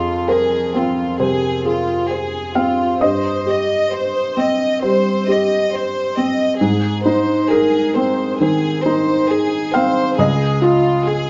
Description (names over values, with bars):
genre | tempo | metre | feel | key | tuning
neoclassical piano and strings | 67 BPM | 4/4 | rubato | F minor | A4 = 440 Hz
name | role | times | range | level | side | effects
rich chamber violin section | melody | 0.0-11.3 s | F4 to Eb5 | -23 LUFS | equal | none
felt-muted upright piano | accompaniment | 0.0-11.3 s | Db2 to F5 | -19 LUFS | equal | none
room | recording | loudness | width
wet studio reverb, RT60 0.6 s | nothing above 8.0 kHz | -17 LUFS | mono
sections
0.0-11.3 A section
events
none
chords
0.0 Fm; 3.0 Cm/G; 6.6 Ab; 10.2 Db